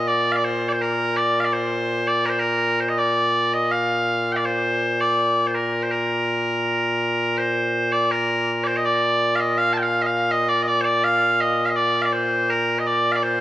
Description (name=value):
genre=scottish traditional, Scottish pipe music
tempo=82 BPM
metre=2/4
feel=straight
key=Bb major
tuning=A4 = 442 Hz
part: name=loud bright bagpipes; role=solo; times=0.0-13.4 s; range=Bb2 to A5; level=-18 LUFS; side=equal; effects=none
room=moderate concert hall reverb, RT60 2.1 s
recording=worn, warbling old tape, cassette tape, warbly pitch drift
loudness=-18 LUFS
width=side -14 dB against mid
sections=0.0-7.4 A section; 7.4-13.4 A section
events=none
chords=none